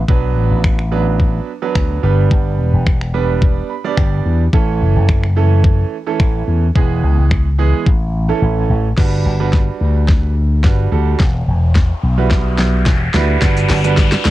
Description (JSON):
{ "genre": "dance-pop", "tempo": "108 BPM", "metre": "4/4", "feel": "straight", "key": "unclear", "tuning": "A4 = 440 Hz", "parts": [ { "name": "slap bass with an envelope filter", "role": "bass", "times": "0.0-14.3 s", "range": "E1 to E2", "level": "-14 LUFS", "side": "left 1 dB", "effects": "sidechain pumping" }, { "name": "clear grand piano", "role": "accompaniment", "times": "0.1-14.3 s", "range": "E3 to B5", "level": "-20 LUFS", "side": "right 9 dB", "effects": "sidechain pumping, cassette tape" }, { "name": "pop drum kit", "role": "drums", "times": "0.1-14.3 s", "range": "crash cymbal, finger snaps, hi-hat, kick drum, shaker, snare drum", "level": "-14 LUFS", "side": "left 1 dB", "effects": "cassette tape" }, { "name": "riser", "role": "sound effects", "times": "10.9-14.3 s", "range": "none", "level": "-25 LUFS", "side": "left 4 dB", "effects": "none" } ], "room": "little or no reverb", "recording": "home recording on cassette", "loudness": "-12 LUFS", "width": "side -16 dB against mid", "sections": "0.0-9.0 A section; 9.0-14.3 B section", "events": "grand piano fill 3.4-4.5; silent gap 8.4-9.0; build-up 9.0-14.3; drum fill 9.0-14.3; riser 10.9-14.3", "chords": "0.1 Bm; 2.0 G; 4.5 A; 6.8 E; 7.9 A; 9.0 Gmaj7; 11.2 Emadd9; 13.4 Gmaj7" }